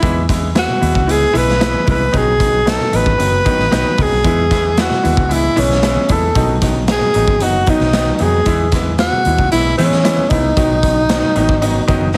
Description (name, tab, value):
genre	uptempo 1960s-style soul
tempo	114 BPM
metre	4/4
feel	straight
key	E major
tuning	A4 = 442 Hz
part	breathy tenor saxophone	melody	0.0-12.1 s	C#4 to B4	-18 LUFS	equal	none
part	clear grand piano	accompaniment	0.0-12.2 s	D#3 to E4	-22 LUFS	equal	none
part	vintage muted fingered electric bass	bass	0.0-12.2 s	F#1 to E3	-21 LUFS	equal	none
part	raw garage drum kit	drums	0.0-12.2 s	hi-hat, kick drum, snare drum	-20 LUFS	equal	none
part	congas	percussion	0.0-12.1 s	none	-30 LUFS	equal	none
room	light reverb, small room ambience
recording	heavily compressed radio sound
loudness	-14 LUFS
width	mono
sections	0.0-12.2 A section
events	none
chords	0.0 E; 2.1 B; 4.2 E; 6.4 B; 8.5 E; 10.6 B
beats	| 0.03 0.55 1.08 1.61 | 2.14 2.67 3.19 3.72 | 4.25 4.78 5.30 5.83 | 6.36 6.88 7.41 7.94 | 8.47 8.99 9.52 10.04 | 10.57 11.10 11.62 12.15